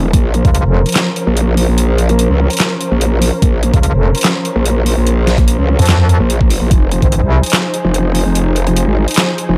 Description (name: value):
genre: heavy wobble dubstep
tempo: 146 BPM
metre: 4/4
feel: half-time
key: unclear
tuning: A4 = 440 Hz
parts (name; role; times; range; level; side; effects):
- bright studio string section; sustained chords; 0.0-9.6 s; F3 to C5; -22 LUFS; equal; sidechain pumping, low-pass filter
- growl bass; bass; 0.0-9.6 s; Eb1 to Db2; -15 LUFS; equal; chorus, overdrive
- dubstep drum kit; drums; 0.1-9.5 s; handclaps, hi-hat, snare drum; -20 LUFS; equal; overdrive
- electronic kick drum; drums; 0.1-0.5, 3.4-7.1 s; none; -14 LUFS; equal; overdrive
- metallic wobble bass; bass; 0.4-0.8, 3.7-7.4 s; F1 to F2; -13 LUFS; equal; chorus, overdrive
room: light reverb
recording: dark, warm production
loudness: -13 LUFS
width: mono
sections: 0.0-9.6 A section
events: none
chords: 0.1 Bbmadd9; 6.7 Fm7